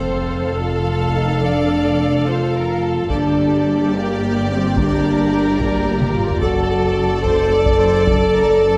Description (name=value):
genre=cinematic, epic orchestral film score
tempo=72 BPM (dotted quarters)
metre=6/8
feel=straight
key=G minor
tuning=A4 = 440 Hz
part: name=warm symphonic violin section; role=melody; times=0.0-8.8 s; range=G4 to D5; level=-29 LUFS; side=equal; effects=none
part: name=rich symphonic violin section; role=second line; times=0.0-8.8 s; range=A4 to F5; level=-31 LUFS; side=equal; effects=none
part: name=rich symphonic viola section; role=accompaniment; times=0.0-8.8 s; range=Bb3 to A4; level=-26 LUFS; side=equal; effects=none
part: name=warm French horn section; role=sustained chords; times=0.0-8.8 s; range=Bb3 to A4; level=-21 LUFS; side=equal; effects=none
part: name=clear symphonic double bass section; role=bass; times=0.0-8.8 s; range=F1 to G1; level=-25 LUFS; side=equal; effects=none
part: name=warm chamber cello section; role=bass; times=0.0-8.8 s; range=F2 to G2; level=-27 LUFS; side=equal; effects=none
part: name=impact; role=sound effects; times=0.0-1.4 s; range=none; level=-36 LUFS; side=equal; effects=none
part: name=taiko ensemble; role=drums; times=1.0-8.6 s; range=none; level=-26 LUFS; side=equal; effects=none
room=moderate scoring stage reverb, RT60 1.5 s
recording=none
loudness=-17 LUFS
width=mono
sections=0.0-8.8 A section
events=impact 0.0-1.4; drum fill 6.0-6.4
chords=0.0 F; 3.1 Gm; 6.4 D/F#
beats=0.60 | 1.43 2.27 | 3.10 3.93 | 4.76 5.59 | 6.42 7.24 | 8.07